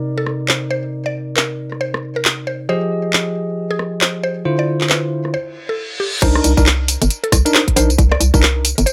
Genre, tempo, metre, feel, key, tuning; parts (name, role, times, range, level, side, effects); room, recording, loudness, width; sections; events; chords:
UK garage, two-step garage; 136 BPM; 4/4; swing 60% on 16ths; C minor; A4 = 442 Hz
bell-like tine electric piano; stabs; 0.0-8.4 s; C3 to Eb5; -23 LUFS; equal; tape echo
mallet-like synth pluck; melody; 0.2-8.9 s; G4 to D5; -26 LUFS; equal; chorus, digital delay
garage drum kit; drums; 0.3-8.9 s; crash cymbal, handclaps, hi-hat, rim click, tambourine; -18 LUFS; equal
reverse cymbal; sound effects; 5.6-6.2 s; -26 LUFS; equal
hollow knocking FM bass; bass; 6.2-8.8 s; G1 to C2; -18 LUFS; equal
electronic kick drum; drums; 6.2-8.4 s; -17 LUFS; equal
light reverb; -17 LUFS; mono
0.0-6.2 A section; 6.2-8.9 B section
filter sweep on tine electric piano 0.0-6.2; break 5.3-6.2; reverse cymbal 5.6-6.2; drop 6.2-8.9
0.0 Cm7; 2.7 Fm7; 4.5 Dm7; 6.2 Cm7